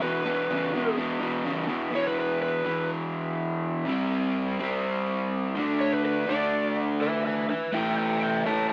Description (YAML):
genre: rock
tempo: 124 BPM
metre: 4/4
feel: straight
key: unclear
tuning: A4 = 440 Hz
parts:
  - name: overdriven slide guitar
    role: melody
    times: 0.0-2.9, 5.8-8.7 s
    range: B4 to A5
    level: -30 LUFS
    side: equal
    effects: none
  - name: raw garage guitar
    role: riff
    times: 0.0-8.7 s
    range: E2 to D4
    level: -29 LUFS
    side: equal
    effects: overdrive
room: moderate studio reverb, RT60 0.6 s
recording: band playing live in one room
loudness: -27 LUFS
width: mono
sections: 0.0-1.9 A section; 1.9-8.7 B section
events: electric slide guitar solo 0.0-1.9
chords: 0.0 E5; 3.9 C5; 5.6 D5; 7.7 A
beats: | 0.01 0.50 0.98 1.46 | 1.94 2.42 2.91 3.39 | 3.87 4.36 4.84 5.32 | 5.81 6.29 6.78 7.26 | 7.74 8.23 8.71